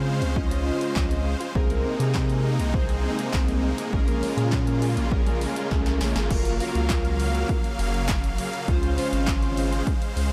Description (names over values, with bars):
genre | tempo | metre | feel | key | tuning
dance-pop | 101 BPM | 4/4 | straight | unclear | A4 = 439 Hz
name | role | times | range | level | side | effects
chorused polysynth | accompaniment | 0.0-9.9 s | C4 to Eb5 | -32 LUFS | equal | sidechain pumping
supersaw chords | sustained chords | 0.0-10.3 s | C3 to F5 | -32 LUFS | equal | sidechain pumping
glassy wavetable pluck | arpeggios | 0.0-6.3 s | F3 to Ab4 | -38 LUFS | equal | none
round analog bass | bass | 0.0-10.3 s | Gb1 to Db3 | -28 LUFS | equal | sidechain pumping
house drum kit | drums | 0.2-10.3 s | crash cymbal, handclaps, hi-hat, kick drum, snare drum | -29 LUFS | equal | none
riser | sound effects | 4.2-6.3 s | none | -41 LUFS | equal | none
group handclap | percussion | 6.9-9.4 s | none | -40 LUFS | equal | none
room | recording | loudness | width
light reverb | none | -24 LUFS | mono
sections
0.0-6.3 A section; 6.3-10.3 B section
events
drum fill 5.7-6.3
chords
0.0 Dbmaj7; 1.6 Abadd9/C; 3.9 Bbm7; 6.3 Gbmaj7; 8.7 Dbmaj7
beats
0.36 0.96 | 1.55 2.15 2.74 3.34 | 3.93 4.52 5.12 5.71 | 6.31 6.90 7.49 8.09 | 8.68 9.28 9.87